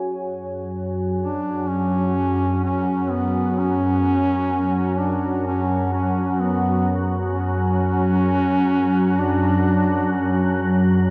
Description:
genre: dark ambient drone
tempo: free time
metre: none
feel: none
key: unclear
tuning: A4 = 441 Hz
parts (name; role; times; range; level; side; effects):
- deep dark ambient pad; sustained chords; 0.0-11.1 s; F#4 to G#5; -33 LUFS; equal; chorus, built-in reverb
- organ-like drone; drone; 0.5-11.1 s; F#2 to F#3; -23 LUFS; equal; ensemble chorus, built-in reverb
- mellow duduk; melody; 1.2-10.8 s; B3 to D4; -24 LUFS; equal; diffuse ambient delay
room: wet cathedral reverb, RT60 5.5 s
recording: in a vast, echoing space, nothing above 8.0 kHz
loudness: -21 LUFS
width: mono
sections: 0.0-11.1 A section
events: none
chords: 0.0 F#sus2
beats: free time

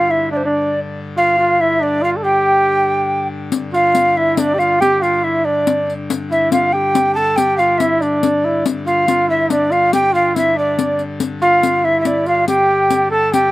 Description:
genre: medieval dance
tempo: 94 BPM (dotted quarters)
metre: 6/8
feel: straight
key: unclear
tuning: A4 = 439 Hz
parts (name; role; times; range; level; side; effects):
- breathy mellow alto recorder; melody; 0.0-13.5 s; C5 to A5; -16 LUFS; equal; slapback echo
- warm flugelhorn; second line; 0.0-13.5 s; D4 to A4; -17 LUFS; right 1 dB; none
- pipe organ, full organ; drone; 0.0-13.5 s; G2 to D3; -27 LUFS; left 2 dB; none
- riq; percussion; 3.5-13.5 s; none; -21 LUFS; left 6 dB; none
room: light reverb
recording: recorded outdoors, with no room sound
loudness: -13 LUFS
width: side -17 dB against mid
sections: 0.0-3.5 A section; 3.5-13.5 A section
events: none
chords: none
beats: 0.31 | 0.95 1.60 | 2.24 2.88 | 3.53 4.17 | 4.81 5.45 | 6.09 6.73 | 7.37 8.01 | 8.65 9.29 | 9.93 10.57 | 11.21 11.85 | 12.48 13.12

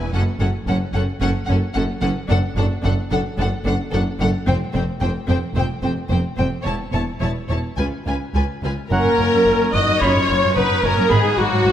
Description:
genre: cinematic, heroic adventure film score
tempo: 110 BPM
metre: 4/4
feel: straight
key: unclear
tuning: A4 = 439 Hz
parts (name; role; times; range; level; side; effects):
- warm symphonic violin section; melody; 0.0-11.7 s; F#4 to A5; -28 LUFS; left 4 dB; none
- warm symphonic violin section; second line; 0.0-11.7 s; F#4 to D#5; -27 LUFS; left 2 dB; none
- warm symphonic viola section; accompaniment; 0.0-11.7 s; C4 to D#5; -24 LUFS; right 1 dB; none
- rich symphonic double bass section; bass; 0.0-11.7 s; E1 to C#2; -23 LUFS; right 1 dB; none
- warm symphonic cello section; bass; 0.0-11.7 s; C#2 to G#2; -23 LUFS; right 1 dB; none
- mellow hollow concert flute; second line; 8.9-11.7 s; F#5 to D#6; -28 LUFS; left 1 dB; none
- warm clarinet; second line; 8.9-11.7 s; F#4 to D#5; -27 LUFS; left 1 dB; none
- warm cor anglais; second line; 8.9-11.7 s; A#3 to F#4; -26 LUFS; right 1 dB; none
- mellow French horn section; sustained chords; 8.9-11.7 s; F#3 to D#4; -25 LUFS; left 5 dB; none
- mellow trombone section; sustained chords; 8.9-11.3 s; F#2 to D#4; -30 LUFS; right 1 dB; none
- warm trumpet; stabs; 8.9-11.3 s; F#5 to B5; -27 LUFS; equal; none
room: moderate scoring stage reverb, RT60 1.9 s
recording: none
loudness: -17 LUFS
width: side -10 dB against mid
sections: 0.0-8.9 A section; 8.9-11.7 B section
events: none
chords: 0.1 F#m; 2.3 D/F#; 4.5 Fsus2; 6.7 A/E; 7.8 C#7; 8.9 F#; 10.0 B/F#; 11.1 G#m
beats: | 0.13 0.67 1.21 1.75 | 2.29 2.84 3.38 3.93 | 4.47 5.02 5.56 6.11 | 6.66 7.21 7.78 8.35 | 8.92 9.47 10.02 10.56 | 11.11 11.66

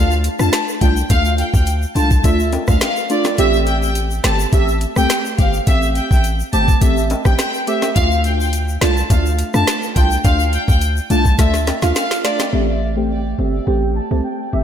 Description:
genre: dancehall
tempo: 105 BPM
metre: 4/4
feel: straight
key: A minor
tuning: A4 = 440 Hz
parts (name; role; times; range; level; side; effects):
- warm studio violin section; melody; 0.0-14.6 s; D5 to A5; -21 LUFS; equal; low-pass filter, ping-pong delay
- deep mellow chord stab; accompaniment; 0.0-14.6 s; A3 to G4; -21 LUFS; right 1 dB; chorus, low-pass filter
- hard-hitting 808-style bass; bass; 0.0-14.6 s; G1 to F2; -18 LUFS; equal; none
- egg shaker and timbales; percussion; 0.1-12.5 s; none; -29 LUFS; left 5 dB; none
- island pop drum kit; drums; 0.2-12.5 s; hi-hat, kick drum, rim click, snare drum; -17 LUFS; equal; none
room: moderate lush hall reverb, RT60 1.9 s, digital ambience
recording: dreamy mix soaked in reverb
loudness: -14 LUFS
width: side -9 dB against mid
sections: 0.0-12.5 A section; 12.5-14.6 B section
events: kick muted 3.4-4.5; drum fill 11.4-12.5; filter sweep 12.5-14.6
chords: 0.0 Dm; 3.4 Am7; 8.0 Dm; 12.5 Am7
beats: 0.53 | 1.10 1.67 2.24 2.82 | 3.39 3.96 4.53 5.10 | 5.67 6.24 6.82 7.39 | 7.96 8.53 9.10 9.67 | 10.24 10.82 11.39 11.96 | 12.53 13.10 13.67 14.24

